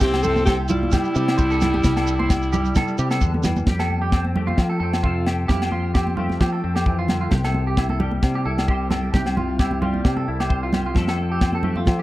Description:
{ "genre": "highlife guitar band", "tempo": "132 BPM", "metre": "4/4", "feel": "swing 54% on 16ths", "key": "F major", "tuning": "A4 = 440 Hz", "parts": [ { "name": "breathy alto saxophone", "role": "melody", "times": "0.0-3.2 s", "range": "E4 to A4", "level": "-23 LUFS", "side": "equal", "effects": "none" }, { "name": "brilliant trumpet", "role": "second line", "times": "0.0-3.2 s", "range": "G3 to C4", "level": "-30 LUFS", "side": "left 4 dB", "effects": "none" }, { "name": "semi-hollow electric guitar", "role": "accompaniment", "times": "0.0-12.0 s", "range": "C3 to C5", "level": "-29 LUFS", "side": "left 3 dB", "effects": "ensemble chorus" }, { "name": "clean electric guitar", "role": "arpeggios", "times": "0.0-12.0 s", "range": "F4 to C5", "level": "-28 LUFS", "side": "right 4 dB", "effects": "wide subtle chorus, tape echo" }, { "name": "fingered electric bass", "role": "bass", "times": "0.0-12.0 s", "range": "C2 to F3", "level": "-24 LUFS", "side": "equal", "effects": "none" }, { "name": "tight funk drum kit", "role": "drums", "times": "0.0-12.0 s", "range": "kick drum, snare drum", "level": "-21 LUFS", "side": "equal", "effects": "none" }, { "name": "shekere", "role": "percussion", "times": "0.0-3.6 s", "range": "none", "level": "-32 LUFS", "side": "right 2 dB", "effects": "none" }, { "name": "agogo bells", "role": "percussion", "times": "0.1-12.0 s", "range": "none", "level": "-31 LUFS", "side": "left 4 dB", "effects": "none" }, { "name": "congas", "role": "percussion", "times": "0.2-12.0 s", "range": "none", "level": "-27 LUFS", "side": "right 2 dB", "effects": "none" } ], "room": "studio reverb", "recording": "dry, close 1970s-style studio recording", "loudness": "-18 LUFS", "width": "side -16 dB against mid", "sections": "0.0-3.7 A section; 3.7-12.0 B section", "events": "none", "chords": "0.0 C; 3.7 Fadd9; 7.3 C; 11.0 Fadd9", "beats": "| 0.02 0.47 0.93 1.39 | 1.84 2.30 2.75 3.21 | 3.67 4.12 4.58 5.03 | 5.49 5.95 6.40 6.86 | 7.31 7.77 8.22 8.68 | 9.14 9.59 10.05 10.50 | 10.96 11.42 11.87" }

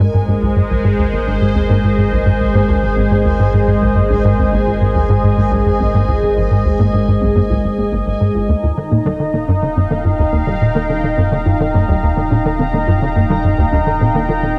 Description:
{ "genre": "ambient, sequencer-driven space music", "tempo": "106 BPM", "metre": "4/4", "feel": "straight", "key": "unclear", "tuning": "A4 = 436 Hz", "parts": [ { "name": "sweeping resonant pad", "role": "sustained chords", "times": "0.0-14.6 s", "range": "Ab3 to Bb5", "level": "-20 LUFS", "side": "equal", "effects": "chorus" }, { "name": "tight sequencer bass", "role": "riff", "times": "0.0-14.5 s", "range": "Ab1 to Eb3", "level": "-18 LUFS", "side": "equal", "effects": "ensemble chorus, cassette tape, tape echo" }, { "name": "warm sub bass", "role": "bass", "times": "0.0-14.6 s", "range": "Eb1 to Ab1", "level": "-25 LUFS", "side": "equal", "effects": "none" }, { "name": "bubbling stepped-filter texture", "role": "texture", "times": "0.0-14.6 s", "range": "Ab5 to Bb5", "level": "-34 LUFS", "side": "equal", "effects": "chorus, built-in reverb" }, { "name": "warbly dusty pluck", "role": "arpeggios", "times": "0.1-14.3 s", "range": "F3 to Bb4", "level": "-28 LUFS", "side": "equal", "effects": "chorus, tape echo" } ], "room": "wet spring reverb, RT60 2.4 s", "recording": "echo-heavy mix, cassette tape", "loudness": "-15 LUFS", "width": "mono", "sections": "0.0-14.6 A section", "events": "fade-in on synth arpeggio sound 0.0-14.6; fade-in on synth texture 0.0-14.6; filter sweep on analog synth bass 0.0-14.6", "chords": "0.0 Abadd9; 8.5 Ebadd9", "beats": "0.00 0.56 1.13 | 1.70 2.26 2.83 3.39 | 3.96 4.53 5.09 5.66 | 6.22 6.79 7.36 7.92 | 8.49 9.05 9.62 10.19 | 10.75 11.32 11.88 12.45 | 13.02 13.58 14.15" }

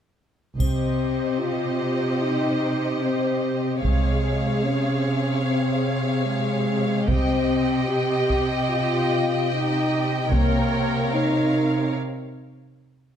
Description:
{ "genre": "cinematic, epic orchestral film score", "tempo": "74 BPM (dotted quarters)", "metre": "6/8", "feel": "straight", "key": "C phrygian", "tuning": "A4 = 439 Hz", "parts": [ { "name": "warm symphonic violin section", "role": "melody", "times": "0.6-11.9 s", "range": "Eb5 to G5", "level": "-32 LUFS", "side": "left 3 dB", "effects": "none" }, { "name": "dark symphonic violin section", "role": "second line", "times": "0.6-11.9 s", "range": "C5 to Eb5", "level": "-30 LUFS", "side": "equal", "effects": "none" }, { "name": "rich symphonic viola section", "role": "accompaniment", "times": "0.6-11.9 s", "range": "G4 to Bb4", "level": "-31 LUFS", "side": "right 3 dB", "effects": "none" }, { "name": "mellow French horn section", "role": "sustained chords", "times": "0.6-11.9 s", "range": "Ab3 to G4", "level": "-25 LUFS", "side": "left 3 dB", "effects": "none" }, { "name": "warm studio cello section", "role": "bass", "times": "0.6-11.9 s", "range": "C3", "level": "-26 LUFS", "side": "right 3 dB", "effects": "none" }, { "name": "warm symphonic double bass section", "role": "bass", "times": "0.6-1.1, 3.8-4.3, 7.1-7.6, 10.3-10.8 s", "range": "C2", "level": "-27 LUFS", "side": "right 3 dB", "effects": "none" }, { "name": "solo taiko drums", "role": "drums", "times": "0.6-11.4 s", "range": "none", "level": "-26 LUFS", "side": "equal", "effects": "none" }, { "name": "triangle", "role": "percussion", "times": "0.6-1.6 s", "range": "none", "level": "-44 LUFS", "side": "left 2 dB", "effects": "none" } ], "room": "moderate scoring stage reverb, RT60 1.4 s", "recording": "none", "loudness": "-20 LUFS", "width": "side -8 dB against mid", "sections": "0.6-13.2 A section", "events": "break 12.0-13.2", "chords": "0.6 Cm; 3.8 Db/C; 7.1 Cm; 10.3 Bbm/C", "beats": "| 0.60 1.41 | 2.22 3.04 | 3.85 4.66 | 5.47 6.28 | 7.09 7.90 | 8.71 9.52 | 10.33 11.14" }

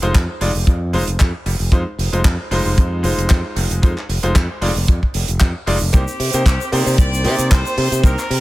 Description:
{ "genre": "nu-disco, nu disco", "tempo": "114 BPM", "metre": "4/4", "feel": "swing 54% on 16ths", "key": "unclear", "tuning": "A4 = 440 Hz", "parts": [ { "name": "bright grand piano", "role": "accompaniment", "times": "0.0-8.1 s", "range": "Ab3 to D5", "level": "-23 LUFS", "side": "equal", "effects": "sidechain pumping, dub echo" }, { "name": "modern bright fingered electric bass", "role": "bass", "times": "0.0-8.4 s", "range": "F1 to C3", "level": "-19 LUFS", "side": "equal", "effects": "none" }, { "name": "tight funk drum kit", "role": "drums", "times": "0.0-8.4 s", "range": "handclaps, hi-hat, shaker", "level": "-24 LUFS", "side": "right 2 dB", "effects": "studio ambience, dub echo" }, { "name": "kick drum", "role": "drums", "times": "0.1-8.2 s", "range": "none", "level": "-12 LUFS", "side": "equal", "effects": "studio ambience" }, { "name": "muted trumpet section", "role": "melody", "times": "5.9-8.4 s", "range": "G4 to D5", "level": "-24 LUFS", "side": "left 1 dB", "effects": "dub echo" }, { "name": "dark studio violin section", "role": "sustained chords", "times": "5.9-8.4 s", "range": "C4 to C5", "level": "-28 LUFS", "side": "equal", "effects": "none" } ], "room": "small room reverb", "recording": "echo-heavy mix", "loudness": "-14 LUFS", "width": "side -18 dB against mid", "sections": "0.0-8.4 A section", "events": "none", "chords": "0.0 Fm7; 5.9 Cm7", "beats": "0.15 0.67 1.20 | 1.73 2.25 2.78 3.30 | 3.83 4.36 4.88 5.41 | 5.93 6.46 6.99 7.51 | 8.04" }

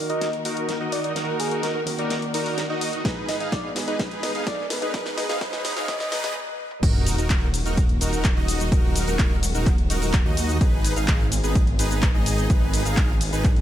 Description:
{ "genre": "EDM, festival progressive house", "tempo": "127 BPM", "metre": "4/4", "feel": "straight", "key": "Eb minor", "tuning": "A4 = 440 Hz", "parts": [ { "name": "warm grand piano", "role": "accompaniment", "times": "0.0-6.9 s", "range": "Ab2 to Cb5", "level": "-33 LUFS", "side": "right 2 dB", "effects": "sidechain pumping, ping-pong delay" }, { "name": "warm symphonic string section", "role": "sustained chords", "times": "0.0-13.6 s", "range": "Eb3 to Cb5", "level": "-34 LUFS", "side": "left 1 dB", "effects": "sidechain pumping" }, { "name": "riser and sub drop", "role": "sound effects", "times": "1.8-8.7 s", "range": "none", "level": "-34 LUFS", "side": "equal", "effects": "none" }, { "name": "soft struck synth lead", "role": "melody", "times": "0.1-6.3 s", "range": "Ab4 to Eb5", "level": "-30 LUFS", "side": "equal", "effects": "chorus, ping-pong delay" }, { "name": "supersaw chords", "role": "riff", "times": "0.1-13.5 s", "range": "Eb4 to F5", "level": "-28 LUFS", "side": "equal", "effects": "sidechain pumping, low-pass filter, ping-pong delay" }, { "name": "big-room dance drum kit", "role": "drums", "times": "0.1-13.6 s", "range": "crash cymbal, handclaps, hi-hat, ride cymbal, shaker, snare drum, toms", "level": "-30 LUFS", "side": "left 1 dB", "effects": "high-pass filter on snare, high-pass filter on hats, high-pass filter on toms, high-pass filter on cymbals, high-pass filter on perc" }, { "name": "electronic kick drum", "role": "drums", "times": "3.0-13.5 s", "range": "none", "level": "-21 LUFS", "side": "equal", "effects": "none" }, { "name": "wide detuned saw bass", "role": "bass", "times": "6.8-13.6 s", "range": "Eb1 to Eb2", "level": "-25 LUFS", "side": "equal", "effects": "chorus, sidechain pumping" } ], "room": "light reverb, digital ambience", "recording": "high-pass filter", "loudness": "-20 LUFS", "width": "side -12 dB against mid", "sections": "0.0-6.8 A section; 6.8-13.6 B section", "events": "build-up 0.0-6.8; drum fill 0.0-6.4, 6.4-6.8; filter sweep on supersaw synth 0.0-6.8; filter sweep 0.0-6.8; stop 6.4-6.8; drop 6.8-13.6; impact 6.8-8.7", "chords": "0.0 Ebm; 3.0 Abm; 6.8 Ebm; 10.6 Abm", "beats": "0.21 0.69 | 1.16 1.63 2.10 2.58 | 3.05 3.52 4.00 4.47 | 4.94 5.41 5.88 6.36 | 6.83 7.30 7.77 8.25 | 8.72 9.19 9.66 10.14 | 10.61 11.08 11.55 12.03 | 12.50 12.97 13.44" }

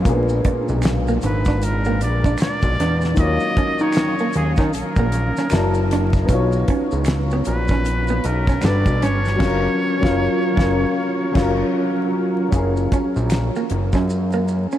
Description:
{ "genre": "R&B, neo-soul", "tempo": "77 BPM", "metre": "4/4", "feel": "swing 60% on 16ths", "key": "F# major", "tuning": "A4 = 440 Hz", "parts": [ { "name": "warm grand piano", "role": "accompaniment", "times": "0.0-14.8 s", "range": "A#2 to A5", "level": "-23 LUFS", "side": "left 2 dB", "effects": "analog chorus" }, { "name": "mellow tonewheel organ", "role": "sustained chords", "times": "0.0-12.5 s", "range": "A#2 to A5", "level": "-28 LUFS", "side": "right 1 dB", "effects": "chorus vibrato, stopped rotary speaker" }, { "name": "fat analog bass", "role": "bass", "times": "0.0-14.7 s", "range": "F#1 to D#3", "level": "-20 LUFS", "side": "equal", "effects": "none" }, { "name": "damped 70s drum kit", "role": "drums", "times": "0.1-14.1 s", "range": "crash cymbal, hi-hat, kick drum, snare drum", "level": "-23 LUFS", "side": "equal", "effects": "none" }, { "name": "maracas and finger snaps", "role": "percussion", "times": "0.1-14.8 s", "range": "none", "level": "-40 LUFS", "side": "right 5 dB", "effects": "none" }, { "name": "vintage hollow-body jazz guitar", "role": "second line", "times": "0.5-14.8 s", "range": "A#3 to D4", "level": "-28 LUFS", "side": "right 4 dB", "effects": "none" }, { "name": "trumpet with straight mute", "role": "melody", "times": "1.3-11.8 s", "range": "G#4 to D#5", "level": "-27 LUFS", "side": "equal", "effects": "ping-pong delay" } ], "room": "wet huge ambient reverb, RT60 8.1 s", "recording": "dreamy mix soaked in reverb, vinyl crackle", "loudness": "-17 LUFS", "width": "side -12 dB against mid", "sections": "0.0-12.5 A section; 12.5-14.8 B section", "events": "band accent 9.4-12.5; kick muted 11.0-12.5; drum fill 14.1-14.8", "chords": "0.1 A#7b9; 3.2 D#m9; 5.5 F#7alt; 6.3 Bmaj9#11; 8.6 Gmaj7; 9.4 F#maj7", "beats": "| 0.06 0.83 1.61 2.39 | 3.17 3.95 4.73 5.51 | 6.29 7.07 7.85 8.63 | 9.40 10.18 10.96 11.74 | 12.52 13.30 14.08" }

